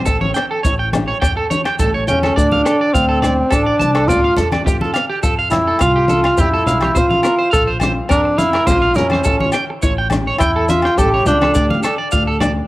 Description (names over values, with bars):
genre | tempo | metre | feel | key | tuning
highlife guitar band | 105 BPM | 4/4 | swing 53% on 16ths | unclear | A4 = 440 Hz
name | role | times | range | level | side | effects
breathy tenor saxophone | melody | 0.0-11.8 s | C4 to A4 | -16 LUFS | equal | cassette tape, analog delay
picked acoustic archtop guitar | accompaniment | 0.1-12.6 s | A3 to F4 | -26 LUFS | left 4 dB | cassette tape
electric guitar at the edge of break-up | arpeggios | 0.1-12.5 s | G4 to A5 | -20 LUFS | right 3 dB | cassette tape, analog delay
upright bass | bass | 0.1-12.6 s | A1 to F2 | -22 LUFS | equal | none
compact cocktail drum kit | drums | 0.1-12.6 s | hi-hat, kick drum, rim click | -21 LUFS | equal | cassette tape
maracas | percussion | 0.1-12.6 s | none | -32 LUFS | left 5 dB | none
congas | percussion | 0.2-12.5 s | none | -23 LUFS | left 1 dB | none
agogo bells | percussion | 0.4-12.6 s | none | -28 LUFS | left 4 dB | none
room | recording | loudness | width
studio reverb | home recording on cassette | -13 LUFS | side -18 dB against mid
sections
0.0-12.7 A section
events
tenor saxophone solo 0.0-12.7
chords
0.1 A7; 2.4 Dm; 4.7 Fadd9; 7.0 Bbsus2; 9.3 A7; 11.5 Dm